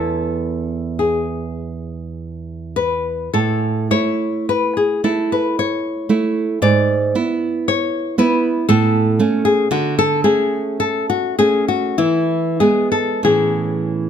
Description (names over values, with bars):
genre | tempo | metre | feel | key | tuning
romantic duo for nylon-string guitar and classical guitar | 44-60 BPM | 3/4 | rubato | A major | A4 = 440 Hz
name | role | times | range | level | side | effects
nylon-string guitar | melody | 0.0-14.1 s | E4 to D5 | -18 LUFS | left 5 dB | none
nylon-string guitar | accompaniment | 0.0-14.1 s | E2 to E4 | -18 LUFS | right 4 dB | none
room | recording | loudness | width
light reverb | close, detailed microphones | -15 LUFS | side -8 dB against mid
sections
0.0-14.1 A section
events
none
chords
0.0 E; 3.4 A; 6.6 E7/G#; 8.7 A; 9.7 D5; 12.0 E; 13.3 A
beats
0.99 2.18 | 3.35 4.49 5.58 | 6.62 7.68 8.70 | 9.72 10.81 11.99 | 13.27